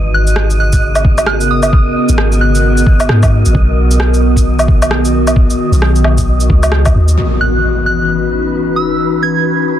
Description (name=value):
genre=future garage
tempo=132 BPM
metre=4/4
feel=swing 60% on 16ths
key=C# dorian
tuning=A4 = 438 Hz
part: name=warbly tape-like pad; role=sustained chords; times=0.0-9.8 s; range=C#3 to B4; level=-16 LUFS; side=left 1 dB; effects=chorus, built-in reverb, phaser, sidechain pumping
part: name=soft 808-style bass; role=bass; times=0.0-7.2 s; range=G#1 to G#2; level=-12 LUFS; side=equal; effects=sidechain pumping
part: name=wind-like tuned noise texture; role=texture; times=0.0-9.8 s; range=B4 to D#5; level=-24 LUFS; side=right 2 dB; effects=built-in reverb
part: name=soft synth bell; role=melody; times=0.1-3.1, 7.4-9.6 s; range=D#6 to G#6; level=-18 LUFS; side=right 2 dB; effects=chorus, phaser, analog delay
part: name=electronic shaker, rim click and woodblock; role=drums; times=0.3-7.2 s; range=none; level=-17 LUFS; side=equal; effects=soft clipping on snare
part: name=electronic kick drum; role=drums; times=0.7-6.9 s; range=none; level=-11 LUFS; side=equal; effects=none
part: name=impact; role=sound effects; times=7.2-9.0 s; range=none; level=-18 LUFS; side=equal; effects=none
room=little or no reverb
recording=dense, heavily limited modern master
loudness=-9 LUFS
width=side -11 dB against mid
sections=0.0-7.2 A section; 7.2-9.8 B section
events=impact 7.2-9.0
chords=0.0 G#m11; 3.5 Bmaj7; 7.2 C#m11